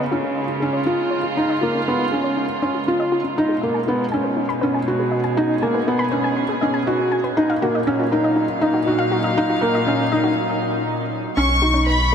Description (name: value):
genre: piano and strings electronica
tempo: 120 BPM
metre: 4/4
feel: straight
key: Eb minor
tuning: A4 = 440 Hz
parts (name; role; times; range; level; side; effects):
- dark chamber string section; sustained chords; 0.0-12.1 s; Bb2 to F5; -24 LUFS; right 1 dB; none
- soft round pluck; arpeggios; 0.0-12.1 s; Db4 to Cb6; -26 LUFS; left 2 dB; chorus, digital delay
- felt-muted upright piano; riff; 0.0-12.1 s; Bb3 to Gb4; -20 LUFS; equal; digital delay
- warm studio violin section; melody; 11.4-12.1 s; B5 to C#6; -18 LUFS; left 2 dB; none
- warm sub bass; bass; 11.4-12.1 s; B1; -20 LUFS; equal; none
room: wet huge ambient reverb, RT60 6.5 s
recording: none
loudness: -18 LUFS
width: side -7 dB against mid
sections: 0.0-11.4 A section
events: build-up 0.0-11.4; filter sweep on synth arpeggio sound 0.0-11.4; break 10.4-11.4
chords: 0.0 Dbadd9; 3.4 Abm; 7.4 Ebmadd9; 11.4 Badd9